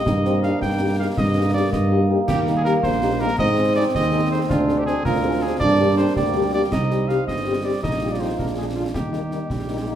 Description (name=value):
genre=military-style march for wind band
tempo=108 BPM (dotted quarters)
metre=6/8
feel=straight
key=Eb major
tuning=A4 = 440 Hz
part: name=warm cornet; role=melody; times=0.0-10.0 s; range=F4 to G5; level=-26 LUFS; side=right 1 dB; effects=none
part: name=clear euphonium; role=second line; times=0.0-10.0 s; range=Bb3 to G4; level=-25 LUFS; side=right 2 dB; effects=none
part: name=warm trombone section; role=sustained chords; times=0.0-10.0 s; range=G3 to Eb4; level=-29 LUFS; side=right 1 dB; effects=none
part: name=mellow tuba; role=bass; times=0.1-10.0 s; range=G1 to Ab2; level=-23 LUFS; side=right 1 dB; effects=none
part: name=concert snare drum, concert bass drum and clash cymbals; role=drums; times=0.1-10.0 s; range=none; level=-28 LUFS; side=left 1 dB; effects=none
part: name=mellow French horn section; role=accompaniment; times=0.2-9.9 s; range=G3 to Ab4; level=-27 LUFS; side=left 4 dB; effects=none
room=wet large studio reverb, RT60 1.3 s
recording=heard from further back in the room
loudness=-18 LUFS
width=side -10 dB against mid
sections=0.0-10.0 A section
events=none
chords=0.1 Eb/G; 2.3 Eb; 3.4 Ab; 4.5 Dm7b5; 5.6 Gm; 6.7 Cm; 7.8 Eb/Bb; 8.4 Bb7; 8.9 Eb